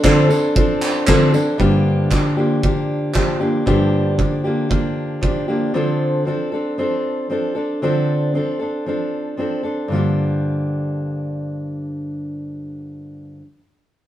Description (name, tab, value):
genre	acoustic pop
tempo	116 BPM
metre	4/4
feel	straight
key	G minor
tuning	A4 = 441 Hz
part	fingerpicked steel-string acoustic guitar	accompaniment	0.0-13.5 s	G2 to A4	-18 LUFS	equal	none
part	loose indie drum kit	drums	0.0-5.3 s	handclaps, kick drum, tambourine	-20 LUFS	right 1 dB	none
room	wet stone room reverb, RT60 0.9 s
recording	band playing live in one room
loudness	-17 LUFS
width	side -12 dB against mid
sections	0.0-1.6 A section; 1.6-9.9 B section; 9.9-14.0 C section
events	none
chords	0.0 Dm7; 1.6 Gm7; 5.7 Dm7; 9.9 Gm7